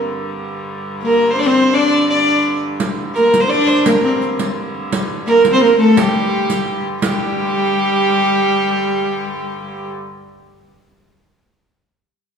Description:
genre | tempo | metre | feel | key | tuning
medieval dance | 170 BPM | 3/4 | straight | G minor | A4 = 442 Hz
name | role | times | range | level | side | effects
clear hurdy-gurdy | drone | 0.0-9.9 s | G2 to D3 | -26 LUFS | equal | none
rich fiddle | melody | 1.0-9.9 s | G4 to D5 | -16 LUFS | right 2 dB | none
clear viola da gamba | second line | 1.0-9.9 s | G3 to D4 | -18 LUFS | left 3 dB | none
riq | percussion | 2.8-7.2 s | none | -22 LUFS | right 2 dB | none
room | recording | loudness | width
wet recital hall reverb, RT60 1.5 s | studio reverb | -13 LUFS | side -6 dB against mid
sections
0.0-7.0 A section; 7.0-9.1 B section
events
none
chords
none

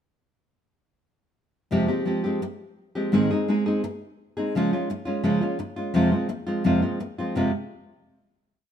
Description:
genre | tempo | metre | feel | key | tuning
flamenco | 170 BPM | 4/4 | straight | F minor | A4 = 440 Hz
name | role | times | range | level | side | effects
nylon-string guitar | solo | 1.7-7.5 s | F2 to Ab4 | -22 LUFS | equal | none
room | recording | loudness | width
moderate stone room reverb, RT60 1.2 s | minimal, uncompressed stereo recording | -22 LUFS | side -9 dB against mid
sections
1.7-7.4 groove; 7.4-8.7 final chord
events
none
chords
1.7 Fmadd9; 3.1 Ab; 4.5 Db; 6.0 Fm

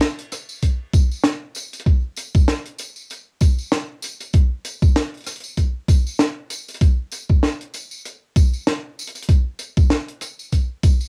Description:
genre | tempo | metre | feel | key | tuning
glitch hop | 97 BPM | 4/4 | swing 57% on 16ths | none | none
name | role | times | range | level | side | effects
tight funk drum kit | drums | 0.0-11.0 s | hi-hat, rim click, snare drum | -24 LUFS | equal | cassette tape
tambourine | percussion | 0.0-11.1 s | none | -36 LUFS | equal | none
electronic kick drum | drums | 0.6-11.0 s | none | -17 LUFS | equal | overdrive, cassette tape
room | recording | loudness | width
light reverb | home recording on cassette | -20 LUFS | mono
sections
0.0-11.1 A section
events
none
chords
none

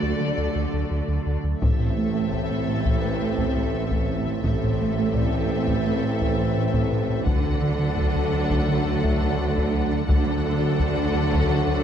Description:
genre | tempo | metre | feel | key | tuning
cinematic, hybrid orchestral and electronic film score | 85 BPM | 4/4 | straight | A dorian | A4 = 440 Hz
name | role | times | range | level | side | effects
rich symphonic violin section | second line | 0.0-11.8 s | A4 to D5 | -33 LUFS | left 4 dB | none
warm studio viola section | accompaniment | 0.0-11.8 s | A3 to F#4 | -34 LUFS | right 1 dB | none
airy breathy pad | sustained chords | 0.0-11.8 s | E3 to D5 | -31 LUFS | left 1 dB | chorus
smooth synth bass | riff | 0.0-11.8 s | D2 to A3 | -27 LUFS | right 1 dB | none
warm studio cello section | bass | 0.0-11.8 s | A2 to D3 | -30 LUFS | right 3 dB | none
clear grand piano | texture | 0.0-11.8 s | B4 to E5 | -42 LUFS | left 4 dB | none
warm symphonic violin section | melody | 1.6-11.8 s | E5 to F#5 | -34 LUFS | left 8 dB | none
mellow trombone section | sustained chords | 1.6-11.8 s | E3 to C4 | -32 LUFS | right 1 dB | none
rich symphonic double bass section | bass | 1.6-11.8 s | A1 to D2 | -30 LUFS | right 3 dB | none
warm tuba | bass | 1.6-11.8 s | A1 to D2 | -30 LUFS | right 2 dB | none
taiko ensemble | drums | 1.6-11.8 s | none | -27 LUFS | left 1 dB | none
room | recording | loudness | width
moderate concert hall reverb, RT60 1.9 s | dark, warm production | -21 LUFS | side -9 dB against mid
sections
0.0-1.6 A section; 1.6-11.8 B section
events
none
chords
0.0 D; 1.6 Am; 7.3 D

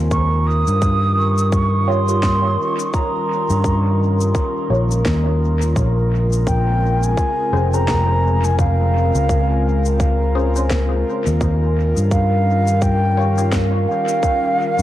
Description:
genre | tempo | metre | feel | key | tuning
ambient dub | 85 BPM | 4/4 | swing 59% on 16ths | unclear | A4 = 440 Hz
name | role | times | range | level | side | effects
airy breathy pad | sustained chords | 0.0-14.8 s | Db3 to Bb4 | -23 LUFS | left 1 dB | chorus
fingered electric bass | bass | 0.0-14.8 s | F1 to G2 | -17 LUFS | equal | none
breathy mellow concert flute | melody | 0.1-14.8 s | F5 to Eb6 | -22 LUFS | right 1 dB | dub echo
electronic cabasa and snare drum | drums | 0.1-14.8 s | none | -30 LUFS | left 1 dB | overdrive, dub echo
electronic kick drum | drums | 0.1-14.4 s | none | -22 LUFS | equal | overdrive
filtered dub chord stab | stabs | 1.9-13.6 s | Db4 to Db5 | -28 LUFS | equal | phaser, lush chorus, dub echo
room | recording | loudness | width
moderate spring reverb, RT60 2.0 s | echo-heavy mix | -15 LUFS | side -13 dB against mid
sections
0.0-14.8 A section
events
none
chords
0.1 Eb9; 5.8 Bbm9; 11.4 Eb9

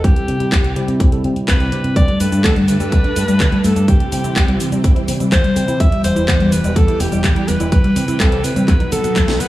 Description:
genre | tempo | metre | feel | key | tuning
italo disco | 125 BPM | 4/4 | straight | unclear | A4 = 440 Hz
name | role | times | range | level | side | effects
bright alto saxophone | melody | 0.0-9.5 s | G4 to E5 | -22 LUFS | equal | digital delay
tine electric piano | stabs | 0.0-1.9 s | G2 to A4 | -22 LUFS | left 1 dB | medium stereo tremolo, digital delay
fingered electric bass with an envelope filter | bass | 0.0-9.5 s | E1 to C3 | -20 LUFS | equal | none
electronic kick drum | drums | 0.0-9.3 s | none | -14 LUFS | equal | none
house drum kit | drums | 0.0-9.5 s | cabasa, handclaps, hi-hat, snare drum | -24 LUFS | equal | gated reverb
phased string machine | sustained chords | 2.0-9.5 s | B2 to A4 | -22 LUFS | left 1 dB | ensemble chorus, phaser
analog pluck | arpeggios | 2.0-9.4 s | D3 to B4 | -21 LUFS | equal | chorus, digital delay
room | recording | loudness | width
light reverb, digital ambience | small room ambience | -13 LUFS | side -16 dB against mid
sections
0.0-9.5 A section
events
drum fill 9.3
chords
0.0 C; 2.0 Gsus2; 3.9 C; 5.8 Em; 7.7 C; 8.7 B

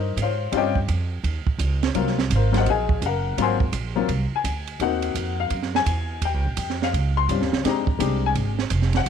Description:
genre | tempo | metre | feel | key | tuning
jazz, small-group swing and bop | 168 BPM | 4/4 | swing 64% on 8ths | unclear | A4 = 441 Hz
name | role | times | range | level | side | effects
warm baby grand piano | accompaniment | 0.0-9.1 s | Gb3 to C6 | -24 LUFS | left 10 dB | none
upright bass | bass | 0.0-9.1 s | F1 to Ab2 | -24 LUFS | right 2 dB | none
compact cocktail drum kit | drums | 0.2-9.1 s | hi-hat, kick drum, ride cymbal, snare drum | -27 LUFS | right 6 dB | none
room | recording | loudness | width
light reverb, small room ambience | 1960s-style stereo with parts hard left and right | -20 LUFS | side -8 dB against mid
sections
0.0-9.1 A section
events
none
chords
0.0 Eb13; 1.9 Ab13; 6.2 Eb13; 7.7 Bb13

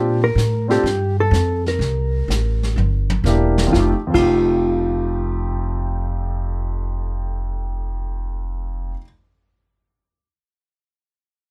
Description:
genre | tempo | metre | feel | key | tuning
jazz, small-group swing and bop | 125 BPM | 4/4 | swing 69% on 8ths | F mixolydian | A4 = 439 Hz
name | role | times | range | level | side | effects
warm grand piano | accompaniment | 0.0-9.0 s | F2 to A4 | -26 LUFS | equal | none
upright bass | bass | 0.0-8.9 s | E1 to Bb2 | -23 LUFS | equal | none
hollow-body jazz guitar | melody | 0.2-8.9 s | F4 to Bb4 | -23 LUFS | equal | none
vintage brush drum kit | drums | 0.4-4.2 s | brushed snare drum, crash cymbal, hi-hat, kick drum, snare drum, toms | -29 LUFS | equal | none
room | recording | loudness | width
light reverb | band playing live in one room | -20 LUFS | mono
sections
0.0-3.7 A section; 3.7-7.6 B section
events
drum fill 2.8-3.7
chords
0.0 Bb69; 1.8 C7; 3.7 F9

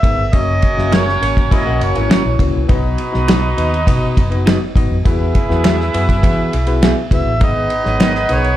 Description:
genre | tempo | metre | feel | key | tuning
uptempo 1960s-style soul | 102 BPM | 4/4 | straight | B major | A4 = 445 Hz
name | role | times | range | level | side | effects
overdriven harmonica | melody | 0.0-2.4, 7.1-8.6 s | C#5 to E5 | -19 LUFS | right 1 dB | plate reverb
tine electric piano | accompaniment | 0.0-8.5 s | A#3 to A#5 | -23 LUFS | moving between left 7 dB and equal | auto-pan, plate reverb, slapback echo
vintage muted fingered electric bass | bass | 0.0-8.6 s | F#1 to E3 | -18 LUFS | equal | none
cloth-damped thuddy drum kit | drums | 0.0-8.6 s | kick drum, ride cymbal, snare drum | -16 LUFS | equal | none
warm horn section | second line | 0.3-8.6 s | B3 to E5 | -21 LUFS | right 2 dB | plate reverb, slapback echo
electric guitar through a small old amp | stabs | 0.9-8.1 s | B3 to E5 | -23 LUFS | right 8 dB | plate reverb, slapback echo
finger snap | percussion | 0.9-8.1 s | none | -28 LUFS | left 4 dB | none
electric guitar through a small old amp | riff | 1.5-2.7 s | E3 to F#4 | -22 LUFS | left 6 dB | slapback echo
room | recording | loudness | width
light reverb | live gig heard through the venue's PA, club reverb | -12 LUFS | side -13 dB against mid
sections
0.0-8.6 A section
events
none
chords
0.3 F#; 2.7 B; 5.1 Eadd9; 7.4 G#madd9

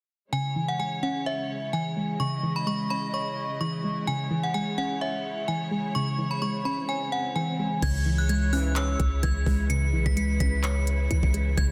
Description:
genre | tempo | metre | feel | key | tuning
hip hop, trap | 128 BPM | 4/4 | half-time | C# minor | A4 = 437 Hz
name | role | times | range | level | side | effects
metallic FM bell | melody | 0.3-11.7 s | E5 to C#7 | -33 LUFS | equal | chorus, tape echo
soft round pluck | accompaniment | 0.3-11.7 s | C#3 to C#5 | -32 LUFS | equal | chorus
rich symphonic string section | sustained chords | 0.3-11.7 s | C#3 to D#5 | -39 LUFS | equal | none
swell | sound effects | 6.4-7.8 s | none | -43 LUFS | equal | none
hard-hitting 808-style bass | bass | 7.8-11.7 s | B1 to C#2 | -28 LUFS | equal | none
trap drum kit | drums | 7.8-11.7 s | crash cymbal, handclaps, hi-hat, kick drum | -30 LUFS | equal | none
mellow brass ensemble | stabs | 8.5-8.9 s | G#2 to E3 | -39 LUFS | equal | none
room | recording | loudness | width
light reverb | dense, heavily limited modern master | -27 LUFS | mono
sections
0.3-7.8 A section; 7.8-11.7 B section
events
swell 6.4-7.8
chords
0.3 C#m

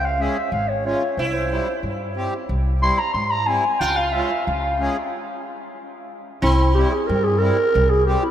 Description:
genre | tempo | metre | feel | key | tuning
klezmer | 92 BPM | 2/4 | straight | C phrygian dominant | A4 = 439 Hz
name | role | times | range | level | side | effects
growling clarinet | melody | 0.0-8.3 s | E4 to C6 | -21 LUFS | equal | none
upright bass | bass | 0.0-8.1 s | Ab1 to Ab2 | -22 LUFS | equal | none
accordion | accompaniment | 0.2-8.2 s | G3 to Ab4 | -28 LUFS | left 1 dB | none
sitar | second line | 1.2-8.3 s | C4 to F4 | -28 LUFS | right 2 dB | none
room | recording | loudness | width
wet cathedral reverb, RT60 6.0 s | in a vast, echoing space | -18 LUFS | side -10 dB against mid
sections
0.0-6.4 A section; 6.4-8.3 B section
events
clarinet solo 0.0-6.4; stop 5.1-6.4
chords
0.0 Db; 1.2 C; 3.8 Db; 5.1 N.C.; 6.4 C

